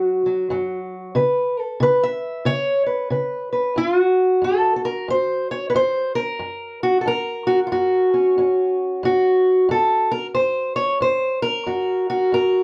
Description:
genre	acoustic country blues, solo or duo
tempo	91 BPM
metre	4/4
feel	swing 62% on 8ths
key	unclear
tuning	A4 = 440 Hz
part	fingerpicked steel-string acoustic guitar	solo	0.0-12.6 s	F#2 to E5	-20 LUFS	equal	none
room	moderate studio ambience, RT60 0.5 s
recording	none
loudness	-20 LUFS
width	mono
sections	0.0-3.8 A section; 3.8-12.6 B section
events	steel-string acoustic guitar solo 0.0-3.8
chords	0.0 N.C.; 1.2 C#m7; 3.8 F#

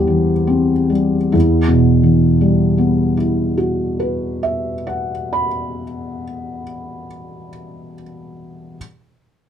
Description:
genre	neoclassical minimalist piano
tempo	69 BPM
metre	3/4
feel	rubato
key	E minor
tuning	A4 = 440 Hz
part	felt-muted upright piano	solo	0.0-8.8 s	E2 to B5	-16 LUFS	equal	none
room	light reverb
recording	close, detailed microphones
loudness	-14 LUFS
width	side -9 dB against mid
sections	0.0-1.3 A section; 1.3-6.5 B section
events	slowing down 0.0-1.3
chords	0.0 C/E; 1.3 Emadd9

